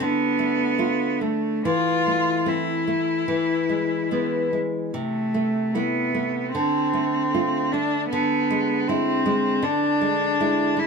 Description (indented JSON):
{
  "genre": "romantic duo for cello and classical guitar",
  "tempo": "68-81 BPM",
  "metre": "4/4",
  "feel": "rubato",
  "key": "A minor",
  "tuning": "A4 = 440 Hz",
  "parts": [
    { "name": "rich cello", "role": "melody", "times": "0.0-10.9 s", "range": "A3 to F4", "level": "-24 LUFS", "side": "left 1 dB", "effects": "plate reverb" },
    { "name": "nylon-string guitar", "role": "accompaniment", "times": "0.0-10.9 s", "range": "C3 to F4", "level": "-23 LUFS", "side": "right 1 dB", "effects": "none" }
  ],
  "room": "moderate studio ambience, RT60 0.5 s",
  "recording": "none",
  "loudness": "-20 LUFS",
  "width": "side -5 dB against mid",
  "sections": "0.0-10.9 A section",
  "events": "none",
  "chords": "0.0 Dm; 1.7 Am/E; 3.3 E; 4.9 Am/C; 6.6 Dm7; 8.1 E7/D"
}